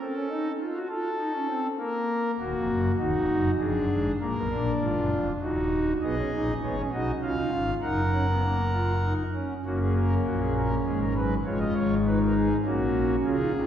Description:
classical, baroque-style 4-part fugue for pipe organ; 100 BPM; 3/4; straight; Eb minor, F# major from 6.0 s; A4 = 440 Hz
pipe organ, foundations; solo; 0.0-13.7 s; Eb1 to F#5; -24 LUFS; equal
wet concert hall reverb, RT60 2.0 s; heard from further back in the room; -24 LUFS; side -9 dB against mid
0.0-6.0 A section; 6.0-9.7 B section; 9.7-13.7 C section
0.0 Adim/C; 0.6 F7; 1.8 N.C.; 2.4 Ebm; 3.6 Ddim/F; 4.2 Bb7; 5.4 Ebm; 6.0 G#m7; 7.2 C#; 7.8 F#; 10.9 G#m11; 11.5 C#7/E#; 12.6 F#/A#

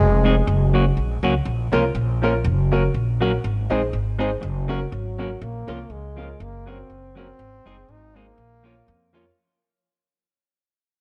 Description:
ska; 121 BPM; 4/4; swing 54% on 8ths; Bb minor; A4 = 439 Hz
clear trombone; melody; 0.0-1.2, 4.9-9.1 s; Gb3 to Eb4; -30 LUFS; equal; analog delay
upright bass; bass; 0.0-9.3 s; F1 to F2; -24 LUFS; equal
semi-hollow electric guitar; accompaniment; 0.2-9.2 s; F3 to Ab4; -28 LUFS; equal
warm upright piano; stabs; 1.7-9.2 s; Db4 to Db5; -28 LUFS; equal
little or no reverb; nothing above 10.9 kHz; -22 LUFS; mono
0.0-9.4 A section
fade-out 0.0-9.4
0.5 Gb; 1.5 Bbm; 2.5 Gb; 3.4 Ab; 4.4 Gb; 5.4 Bbm; 6.4 Gb; 7.4 Ab; 8.4 Bbm

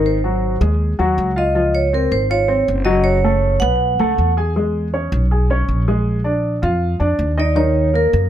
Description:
Afro-Cuban jazz; 160 BPM; 4/4; straight; A4 = 440 Hz
vibraphone with medium hard mallets; melody; 0.0-4.3, 7.4-8.3 s; Bb4 to Gb5; -18 LUFS; right 2 dB; plate reverb
warm baby grand piano; accompaniment; 0.0-8.2 s; Eb3 to Ab5; -20 LUFS; left 1 dB
upright bass; bass; 0.0-8.3 s; Gb1 to Gb2; -18 LUFS; equal
light reverb; -15 LUFS; side -11 dB against mid
0.0-8.3 A section
0.1 Ab7; 1.6 Dbmaj7; 3.1 Gbm; 3.8 Bsus2; 4.6 E6; 6.1 Bb7; 7.6 Ebm7

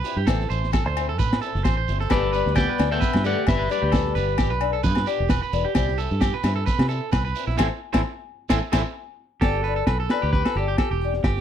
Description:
highlife guitar band; 131 BPM; 4/4; swing 55% on 16ths; G major; A4 = 440 Hz
picked old ladder-braced acoustic guitar; accompaniment; 0.0-11.2 s; E3 to G4; -30 LUFS; left 15 dB
electric guitar at the edge of break-up; arpeggios; 0.0-11.4 s; E4 to C5; -28 LUFS; right 9 dB; slapback echo
shekere; percussion; 0.0-8.8 s; -35 LUFS; right 8 dB
fingered electric bass; bass; 0.2-11.4 s; E1 to C3; -25 LUFS; equal
crunchy breakbeat drum kit; drums; 0.3-11.4 s; kick drum, snare drum; -23 LUFS; equal
agogo bells; percussion; 0.3-11.4 s; -33 LUFS; left 23 dB
electric guitar at the edge of break-up; melody; 2.1-4.6, 9.4-11.2 s; G4 to G5; -26 LUFS; left 2 dB
clear trombone; second line; 2.1-4.6 s; G3 to B3; -30 LUFS; left 14 dB
little or no reverb; dry, close 1970s-style studio recording; -20 LUFS; side -9 dB against mid
0.0-9.4 A section; 9.4-11.4 B section
band accent 7.6-9.4; clean electric guitar solo 9.4-11.4
0.3 Am; 2.1 G; 5.8 C; 7.6 Am; 9.4 G

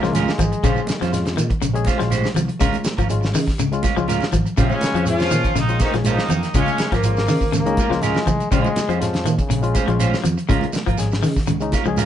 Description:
afrobeat; 122 BPM; 4/4; straight; Bb minor; A4 = 440 Hz
mellow horn section; melody; 0.0-0.4, 4.6-7.7 s; Db3 to F4; -23 LUFS; left 1 dB
brilliant bass trombone; second line; 0.0-1.1, 7.5-10.3 s; Db3 to Bb3; -25 LUFS; left 3 dB
raspy tenor saxophone; second line; 0.0-0.4, 4.6-7.7 s; Db3 to Db4; -31 LUFS; right 3 dB
barky reed electric piano; accompaniment; 0.0-12.1 s; Ab3 to Ab4; -27 LUFS; left 5 dB
electric guitar at the edge of break-up; arpeggios; 0.0-12.1 s; Db3 to F3; -25 LUFS; left 5 dB
clean electric guitar; stabs; 0.0-12.1 s; Ab3 to C5; -26 LUFS; right 6 dB
fingered electric bass; bass; 0.0-12.1 s; Ab1 to Db3; -24 LUFS; equal
damped 70s drum kit; drums; 0.0-12.1 s; hi-hat, kick drum, snare drum; -23 LUFS; equal
shekere; percussion; 0.0-12.1 s; -28 LUFS; right 4 dB
congas; percussion; 0.1-12.1 s; -26 LUFS; right 2 dB
wet studio reverb, RT60 0.5 s; band playing live in one room, nothing above 10.9 kHz; -17 LUFS; side -10 dB against mid
0.0-12.1 A section
0.0 Db6; 0.6 Bbm9; 2.6 Db6; 4.6 Bbm9; 6.6 Db6; 8.5 Bbm9; 10.5 Db6

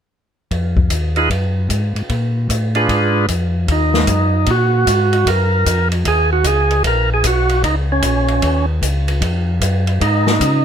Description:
soul jazz organ trio; 152 BPM; 4/4; swing 65% on 8ths; Eb minor; A4 = 440 Hz
mellow tonewheel organ; bass; 0.5-10.6 s; Bb1 to Db3; -17 LUFS; left 1 dB; slow rotary speaker
open jazz drum kit; drums; 0.5-10.5 s; hi-hat, kick drum, ride cymbal, snare drum; -21 LUFS; left 1 dB
percussive tonewheel organ; melody; 1.2-10.6 s; Db4 to Cb5; -16 LUFS; right 3 dB; slow rotary speaker, overdrive
little or no reverb; close, detailed microphones; -14 LUFS; side -8 dB against mid
0.5-3.7 A section; 3.7-10.6 B section
0.5 Fm7; 2.1 Bb7b9; 3.7 Ebm9; 10.0 Ab5

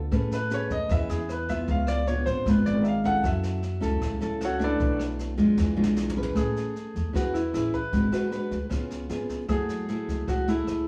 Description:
bossa nova; 154 BPM; 4/4; straight; A major; A4 = 440 Hz
nylon-string guitar; accompaniment; 0.0-10.9 s; B2 to B4; -30 LUFS; equal
upright bass; bass; 0.0-10.9 s; G#1 to A2; -32 LUFS; equal
jazz brush drum kit; drums; 0.1-10.8 s; kick drum, rim click, snare drum, toms; -36 LUFS; equal
clear concert grand piano; melody; 0.3-10.9 s; D4 to F#5; -32 LUFS; equal; plate reverb
wet studio reverb, RT60 0.7 s; heard from further back in the room, small room reverb; -27 LUFS; mono
0.0-6.4 A section; 6.4-10.9 B section
grand piano solo 0.0-6.4; drum fill 5.6-6.4
0.1 Amaj9; 1.7 C#7b9; 3.2 F#m7; 4.8 Bm7; 5.6 E7b9; 6.4 Amaj9; 7.9 G#m7b5; 8.7 C#7; 9.5 F#m9

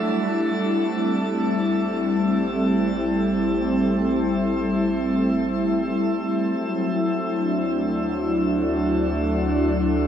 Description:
ambient; free time; A dorian; A4 = 440 Hz
warm analog pad; sustained chords; 0.0-10.1 s; F#3 to A4; -20 LUFS; equal; chorus
deep rumbling drone; bass; 0.0-10.1 s; A1 to D2; -33 LUFS; equal; built-in reverb
wet shimmer reverb, RT60 9.5 s; -20 LUFS; side -9 dB against mid
0.0-10.1 A section
fade-in on synth drone 0.0-10.1
0.0 Am7; 6.5 Dadd9

